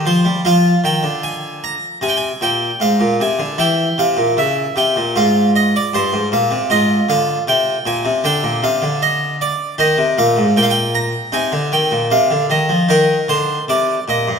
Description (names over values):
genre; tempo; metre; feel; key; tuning
classical, baroque-style suite movement for harpsichord; 77 BPM; 4/4; rubato; Eb major from 6.7 s; A4 = 440 Hz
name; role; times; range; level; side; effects
harpsichord; solo; 0.0-14.4 s; G2 to Bb5; -14 LUFS; equal; none
room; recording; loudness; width
wet recital hall reverb, RT60 1.9 s; minimal, uncompressed stereo recording; -14 LUFS; side -6 dB against mid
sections
0.0-14.4 A section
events
none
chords
0.4 Fm; 3.6 C7; 5.2 Fm; 8.2 Bb (rootless); 9.8 Eb5; 11.3 Bb9sus4 (rootless); 12.9 Eb5